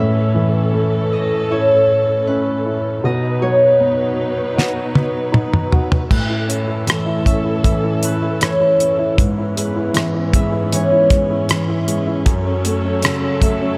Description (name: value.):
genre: pop ballad.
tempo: 78 BPM.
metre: 4/4.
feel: straight.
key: unclear.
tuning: A4 = 440 Hz.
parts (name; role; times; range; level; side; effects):
Celtic harp; melody; 0.0-13.8 s; B4 to E5; -21 LUFS; equal; none.
warm baby grand piano; accompaniment; 0.0-13.8 s; F#2 to F#4; -22 LUFS; equal; analog chorus.
warm studio string section; sustained chords; 0.0-13.8 s; F#2 to B4; -24 LUFS; equal; none.
damped 70s drum kit; drums; 4.6-13.6 s; crash cymbal, hi-hat, kick drum, rim click, snare drum, toms; -19 LUFS; equal; none.
room: moderate plate reverb, RT60 2.7 s.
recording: dreamy mix soaked in reverb.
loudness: -17 LUFS.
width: mono.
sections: 0.0-6.1 A section; 6.1-13.8 B section.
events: drum fill 4.6-6.1.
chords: 0.0 A; 3.0 B; 6.1 A; 9.2 C#m7/G#; 12.3 F#m.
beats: 0.73 1.50 2.27 | 3.03 3.80 4.57 5.34 | 6.11 6.88 7.65 8.42 | 9.19 9.96 10.73 11.49 | 12.27 13.03.